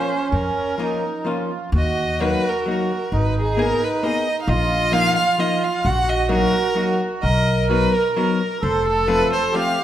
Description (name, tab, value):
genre	musette waltz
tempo	131 BPM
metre	3/4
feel	rubato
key	unclear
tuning	A4 = 442 Hz
part	rich violin	melody	0.0-9.8 s	Ab4 to Gb5	-22 LUFS	equal	none
part	accordion	second line	0.0-9.8 s	Db4 to Bb4	-23 LUFS	right 3 dB	light tremolo tuning
part	archtop guitar, miked and amplified	accompaniment	0.0-9.8 s	F3 to Ab4	-24 LUFS	left 3 dB	none
part	upright bass	bass	0.3-9.2 s	F1 to F2	-22 LUFS	equal	none
room	wet recital hall reverb, RT60 1.4 s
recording	recorded in a church or concert hall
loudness	-17 LUFS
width	side -11 dB against mid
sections	0.0-1.7 A section; 1.7-9.8 B section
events	none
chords	0.0 Bbm; 1.7 Ebm; 3.1 Abmadd9; 4.5 Bbsus4; 5.8 Ebm/Bb; 7.2 B; 8.6 F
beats	| 0.33 0.79 1.26 | 1.73 2.20 2.67 | 3.13 3.58 4.04 | 4.49 4.94 5.39 | 5.85 6.30 6.76 | 7.24 7.71 8.17 | 8.63 9.08 9.53